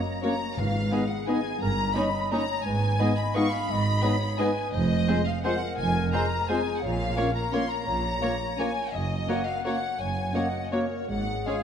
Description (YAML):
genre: classical, orchestral ballroom waltz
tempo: 150-189 BPM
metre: 3/4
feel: rubato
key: unclear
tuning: A4 = 440 Hz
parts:
  - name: rich symphonic violin section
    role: melody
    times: 0.0-11.6 s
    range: Db5 to C#6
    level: -33 LUFS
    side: left 2 dB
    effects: none
  - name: mellow clarinet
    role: second line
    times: 0.0-11.6 s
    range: Ab4 to Gb5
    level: -35 LUFS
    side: left 3 dB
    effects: none
  - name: mellow large flute ensemble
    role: second line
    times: 0.2-11.6 s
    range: Db5 to C#6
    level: -34 LUFS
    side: left 1 dB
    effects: none
  - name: warm oboe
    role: second line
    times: 0.2-11.6 s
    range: Ab4 to D#5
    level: -38 LUFS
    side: equal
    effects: none
  - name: warm symphonic violin section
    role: second line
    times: 0.2-11.6 s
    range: D#4 to C#5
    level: -38 LUFS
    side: left 3 dB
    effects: none
  - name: mellow bassoon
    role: accompaniment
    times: 0.2-11.6 s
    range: Ab3 to C#4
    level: -35 LUFS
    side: right 1 dB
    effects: none
  - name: warm symphonic viola section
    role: accompaniment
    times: 0.2-11.5 s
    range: G#3 to F#4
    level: -34 LUFS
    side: right 1 dB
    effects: none
  - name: mellow French horn section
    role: sustained chords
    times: 0.2-11.6 s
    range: Ab3 to D#4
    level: -34 LUFS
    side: left 4 dB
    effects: none
  - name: rich studio double bass section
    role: bass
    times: 0.6-11.4 s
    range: F1 to Bb1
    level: -31 LUFS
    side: right 2 dB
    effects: none
  - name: warm symphonic cello section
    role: bass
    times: 0.6-11.4 s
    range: F2 to Bb2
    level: -32 LUFS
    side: right 2 dB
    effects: none
  - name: timpani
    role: percussion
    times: 0.6-1.1 s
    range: G#2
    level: -36 LUFS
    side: left 1 dB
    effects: none
room: wet scoring stage reverb, RT60 2.1 s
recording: dark, warm production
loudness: -24 LUFS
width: side -8 dB against mid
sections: 0.0-11.6 A section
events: none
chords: 0.0 F#; 0.6 G#m; 1.6 D#7/G; 2.7 G#m; 4.7 Fm; 6.8 Bbm; 8.9 Ebm7/Gb; 11.1 Db/Ab